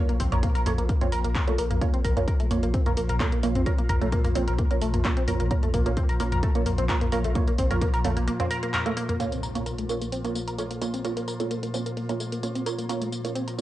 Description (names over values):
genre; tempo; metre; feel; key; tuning
driving peak-time techno; 130 BPM; 4/4; straight; Bb harmonic minor; A4 = 444 Hz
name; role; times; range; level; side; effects
tight sequenced synth; riff; 0.0-13.6 s; A3 to Bb4; -30 LUFS; left 1 dB; chorus, phaser, tube saturation, sidechain pumping, cassette tape, tape echo
filtered dub chord stab; stabs; 0.0-13.6 s; Bb3 to Db5; -32 LUFS; right 7 dB; phaser, lush chorus, sidechain pumping, cassette tape, analog delay
metallic inharmonic drone; drone; 0.1-13.6 s; Bb2 to F3; -33 LUFS; left 1 dB; chorus, built-in reverb, sidechain pumping, cassette tape
techno drum kit; drums; 0.1-13.6 s; handclaps, hi-hat, tambourine, toms; -32 LUFS; equal; overdrive, sidechain pumping on hats, small room ambience, sidechain pumping on toms, sidechain pumping on cymbals, sidechain pumping on perc
saturated sub bass; bass; 0.2-8.3 s; Bb1; -27 LUFS; equal; overdrive, sidechain pumping, low-pass filter
electronic kick drum; drums; 0.2-7.9 s; none; -25 LUFS; equal; small room ambience
impact; sound effects; 9.2-11.0 s; none; -38 LUFS; left 1 dB; none
room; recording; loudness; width
light reverb, digital ambience; home recording on cassette, nothing above 10.3 kHz; -23 LUFS; side -14 dB against mid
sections
0.0-9.2 A section; 9.2-13.6 B section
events
break 8.3-9.2; impact 9.2-11.0; filter sweep on synth arpeggio sound 9.2-13.6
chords
0.0 Bbm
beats
0.43 0.89 1.35 | 1.82 2.28 2.74 3.20 | 3.66 4.12 4.58 5.05 | 5.51 5.97 6.43 6.89 | 7.35 7.82 8.28 8.74 | 9.20 9.66 10.12 10.59 | 11.05 11.51 11.97 12.43 | 12.89 13.35